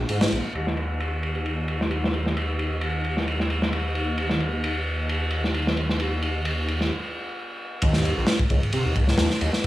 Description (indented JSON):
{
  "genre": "breakbeat, breaks",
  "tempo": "132 BPM",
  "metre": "4/4",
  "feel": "swing 54% on 16ths",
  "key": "unclear",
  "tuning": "A4 = 440 Hz",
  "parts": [
    { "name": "phased detuned saw bass", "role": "bass", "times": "0.0-9.5 s", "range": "Bb1 to C3", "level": "-25 LUFS", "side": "equal", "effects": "phaser" },
    { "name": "crunchy breakbeat drum kit", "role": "drums", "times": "0.1-9.7 s", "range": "kick drum, ride cymbal, snare drum", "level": "-25 LUFS", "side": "equal", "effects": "low-pass filter on kick, low-pass filter on cymbals, low-pass filter on snare, low-pass filter on room" }
  ],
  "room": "little or no reverb",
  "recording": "dry, gritty hardware recording, small room reverb",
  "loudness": "-22 LUFS",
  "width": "side -15 dB against mid",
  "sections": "0.5-7.8 A section; 7.8-9.7 B section",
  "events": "stop 6.9-7.8; drop 7.8-9.7",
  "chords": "none",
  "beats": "0.10 | 0.55 1.00 1.46 1.91 | 2.37 2.82 3.28 3.73 | 4.19 4.64 5.09 5.55 | 6.00 6.46 6.91 7.37 | 7.82 8.28 8.73 9.19 | 9.64"
}